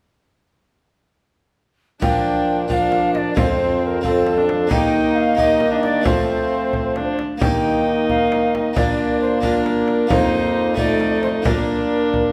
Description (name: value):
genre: classical, renaissance-style consort dance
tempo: 89 BPM (dotted quarters)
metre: 6/8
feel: straight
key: Bb major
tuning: A4 = 443 Hz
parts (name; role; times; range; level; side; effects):
- alto recorder; melody; 2.0-12.3 s; A4 to G5; -24 LUFS; equal; none
- warm viola; second line; 2.0-12.3 s; C4 to Eb4; -27 LUFS; equal; none
- clear trombone; accompaniment; 2.0-12.3 s; F3 to Bb3; -26 LUFS; equal; none
- harpsichord; accompaniment; 2.0-12.3 s; F2 to G4; -27 LUFS; equal; none
- warm bassoon; bass; 2.0-12.3 s; F2 to F3; -25 LUFS; equal; none
- frame drum; percussion; 2.0-12.3 s; none; -26 LUFS; equal; none
room: wet recital hall reverb, RT60 1.3 s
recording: none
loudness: -18 LUFS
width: mono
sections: 2.0-12.3 A section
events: none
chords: 2.0 Bb; 3.4 F; 4.7 Eb; 6.1 F; 7.4 Eb; 8.8 Bb; 10.1 F7sus4; 10.8 F7; 11.5 Bb